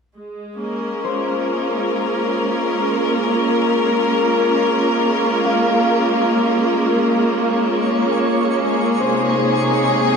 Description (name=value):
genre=ambient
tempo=68 BPM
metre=4/4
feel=straight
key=Bb minor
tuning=A4 = 440 Hz
part: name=rich chamber string section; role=sustained chords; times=0.2-10.2 s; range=C3 to Bb4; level=-16 LUFS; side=equal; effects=shimmer reverb
part: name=Celtic harp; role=arpeggios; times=1.0-10.2 s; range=C5 to Ab5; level=-26 LUFS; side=left 1 dB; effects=diffuse ambient delay, shimmer reverb
part: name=twinkling granular texture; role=texture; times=7.5-10.2 s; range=Db5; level=-23 LUFS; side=right 3 dB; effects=built-in reverb, shimmer reverb
room=wet huge ambient reverb, RT60 7.7 s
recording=in a vast, echoing space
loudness=-16 LUFS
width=side -5 dB against mid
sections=0.2-10.2 A section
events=fade-out on harp 0.2-10.2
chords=0.2 Bbm7